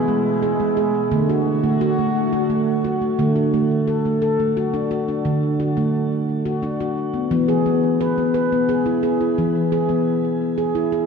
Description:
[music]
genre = world meditative, meditative tuned percussion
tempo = 87 BPM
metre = 3/4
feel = straight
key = D lydian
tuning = A4 = 445 Hz
[part]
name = warbly tape-like pad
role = sustained chords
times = 0.0-3.2 s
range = B2 to F#4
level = -25 LUFS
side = left 2 dB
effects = chorus, built-in reverb, phaser, shimmer reverb
[part]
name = handpan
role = arpeggios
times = 0.0-11.1 s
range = D3 to B4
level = -18 LUFS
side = equal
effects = ping-pong delay, shimmer reverb
[sound]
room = wet concert hall reverb, RT60 1.8 s, studio ambience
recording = dark, warm production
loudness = -18 LUFS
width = side -6 dB against mid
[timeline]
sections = 0.0-3.2 A section; 3.2-11.1 B section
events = none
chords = 0.0 E; 1.1 D; 7.3 E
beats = 0.42 | 1.11 1.80 2.49 | 3.18 3.87 4.55 | 5.24 5.93 6.62 | 7.31 8.00 8.69 | 9.38 10.07 10.76

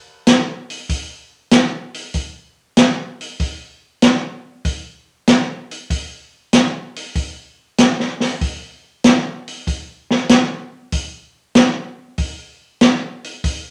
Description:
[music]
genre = jazz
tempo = 96 BPM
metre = 4/4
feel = swing 69% on 8ths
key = none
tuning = none
[part]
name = open jazz drum kit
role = drums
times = 0.3-13.6 s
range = hi-hat, kick drum, snare drum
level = -17 LUFS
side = equal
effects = none
[sound]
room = wet studio reverb, RT60 0.7 s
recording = none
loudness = -18 LUFS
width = mono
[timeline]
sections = 0.0-13.7 A section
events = none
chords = none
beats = 0.27 | 0.90 1.52 2.15 2.78 | 3.40 4.03 4.66 5.28 | 5.91 6.54 7.16 7.79 | 8.42 9.04 9.67 10.30 | 10.93 11.56 12.19 12.82 | 13.45

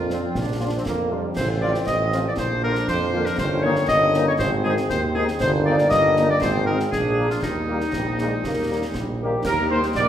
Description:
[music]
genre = military-style march for wind band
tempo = 119 BPM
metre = 2/4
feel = straight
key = Eb major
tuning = A4 = 441 Hz
[part]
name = clear woodwind section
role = second line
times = 0.0-10.1 s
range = Eb4 to Eb5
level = -23 LUFS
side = left 1 dB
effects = none
[part]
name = bright trombone section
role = sustained chords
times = 0.0-10.1 s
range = Eb3 to Eb4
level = -29 LUFS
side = right 1 dB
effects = none
[part]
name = warm tuba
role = bass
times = 0.0-10.1 s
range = G1 to F2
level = -24 LUFS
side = right 2 dB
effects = none
[part]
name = dark trumpet section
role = melody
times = 0.1-10.1 s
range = Bb3 to D5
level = -29 LUFS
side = right 1 dB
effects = none
[part]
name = dark French horn section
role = accompaniment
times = 0.1-9.8 s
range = D3 to G4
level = -30 LUFS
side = left 4 dB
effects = none
[part]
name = concert snare drum, concert bass drum and clash cymbals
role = drums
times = 0.1-10.1 s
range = none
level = -32 LUFS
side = equal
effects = none
[part]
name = warm euphonium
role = second line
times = 10.0-10.1 s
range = Bb3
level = -27 LUFS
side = right 5 dB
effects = none
[sound]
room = wet recital hall reverb, RT60 1.4 s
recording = recorded in a church or concert hall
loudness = -19 LUFS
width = side -10 dB against mid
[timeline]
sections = 0.0-9.5 A section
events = none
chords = 0.0 Bb; 1.4 F/A; 2.4 Bb; 3.4 Eb7/G; 4.4 Ab; 5.4 Eb/G; 6.4 Ab; 6.9 Bb7; 7.4 Eb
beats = | 0.35 0.86 | 1.36 1.87 | 2.38 2.88 | 3.39 3.89 | 4.40 4.90 | 5.41 5.91 | 6.42 6.92 | 7.43 7.94 | 8.44 8.95 | 9.45 9.96

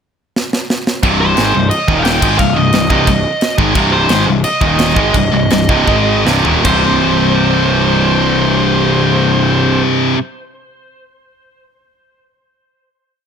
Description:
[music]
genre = heavy metal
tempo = 150-176 BPM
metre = 4/4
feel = straight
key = C minor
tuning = A4 = 440 Hz
[part]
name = tight metal drum kit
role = drums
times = 0.4-6.7 s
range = crash cymbal, kick drum, snare drum, toms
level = -17 LUFS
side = equal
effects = none
[part]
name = scooped high-gain guitar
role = riff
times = 1.0-10.2 s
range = C2 to Ab3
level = -15 LUFS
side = left 9 dB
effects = distortion
[part]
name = tight distorted guitar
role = riff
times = 1.0-10.2 s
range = C2 to Ab3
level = -16 LUFS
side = right 13 dB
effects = distortion
[part]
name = fuzz picked electric bass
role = bass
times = 1.0-9.8 s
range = C1 to Ab1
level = -18 LUFS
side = equal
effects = overdrive
[part]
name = high-gain lead guitar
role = melody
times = 1.2-9.8 s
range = C5 to G5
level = -17 LUFS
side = equal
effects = distortion
[sound]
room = small room ambience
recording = none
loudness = -10 LUFS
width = side -7 dB against mid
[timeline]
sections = 0.0-1.0 pickup bar; 1.0-6.7 riff; 6.7-9.8 final chord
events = drum fill 0.3-1.0, 5.9-6.7; slowing down 3.8-6.7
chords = 0.0 N.C.; 1.0 Cm; 1.9 Eb5; 2.2 Cm; 4.6 Eb5; 5.0 Cm; 5.9 Ab5; 6.3 Cm; 6.7 C5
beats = 0.01 0.35 0.69 | 1.03 1.37 1.72 2.06 | 2.40 2.74 3.08 3.42 | 3.76 4.10 4.44 4.79 | 5.15 5.51 5.88 6.26 | 6.65 7.05 7.45 7.85 | 8.25 8.65 9.05 9.45

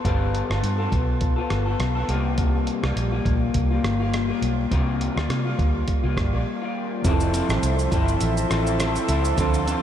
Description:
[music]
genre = indie pop, bedroom pop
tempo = 103 BPM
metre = 4/4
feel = swing 55% on 16ths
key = unclear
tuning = A4 = 442 Hz
[part]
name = electric guitar through a small old amp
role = accompaniment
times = 0.0-9.8 s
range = C3 to A4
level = -25 LUFS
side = left 3 dB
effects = lush chorus, warbly pitch drift
[part]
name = vintage muted fingered electric bass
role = bass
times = 0.0-9.7 s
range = F1 to C3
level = -24 LUFS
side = right 1 dB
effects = none
[part]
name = dusty soul sampler-style drum kit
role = drums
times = 0.0-9.8 s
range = hi-hat, kick drum, rim click, shaker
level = -26 LUFS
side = right 1 dB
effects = none
[part]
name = tine electric piano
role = accompaniment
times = 7.0-9.8 s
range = F3 to A4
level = -29 LUFS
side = right 8 dB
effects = medium stereo tremolo, cassette tape
[part]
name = hollow soft pad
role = sustained chords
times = 7.0-9.8 s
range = A4 to C6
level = -29 LUFS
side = right 1 dB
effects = chorus
[sound]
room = moderate huge ambient reverb, RT60 7.0 s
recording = dreamy mix soaked in reverb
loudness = -20 LUFS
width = side -10 dB against mid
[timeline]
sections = 0.0-7.0 A section; 7.0-9.8 B section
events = break 6.5-7.0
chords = 0.0 G9; 2.1 C7sus4; 7.0 Fmaj7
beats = | 0.05 0.63 1.22 1.80 | 2.38 2.96 3.55 4.13 | 4.71 5.30 5.88 6.46 | 7.04 7.63 8.21 8.79 | 9.38

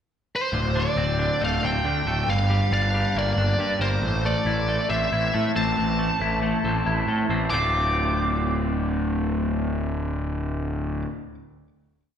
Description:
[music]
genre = quiet-loud alternative rock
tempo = 138 BPM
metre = 4/4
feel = straight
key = D minor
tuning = A4 = 440 Hz
[part]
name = fuzz lead guitar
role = melody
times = 0.4-11.0 s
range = C5 to D6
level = -26 LUFS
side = equal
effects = distortion, slapback echo, digital delay
[part]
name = twelve-string electric guitar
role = arpeggios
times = 0.5-11.1 s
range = D2 to F4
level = -26 LUFS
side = left 2 dB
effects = slapback echo
[part]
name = fuzz picked electric bass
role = bass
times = 0.5-11.0 s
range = D1 to A2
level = -25 LUFS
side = equal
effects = overdrive
[sound]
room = moderate club reverb, RT60 0.6 s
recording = live gig heard through the venue's PA, recital hall reverb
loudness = -21 LUFS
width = side -8 dB against mid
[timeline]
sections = 0.0-0.5 pickup bar; 0.5-7.5 verse; 7.5-11.0 final chord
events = none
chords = 0.0 N.C.; 0.5 D5; 2.3 Gm7; 4.0 Am; 7.5 Dm7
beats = 0.10 | 0.54 0.98 1.41 1.85 | 2.28 2.72 3.15 3.59 | 4.02 4.46 4.89 5.33 | 5.76 6.20 6.63 7.07 | 7.51 7.95 8.38 8.82 | 9.26 9.69 10.13 10.56

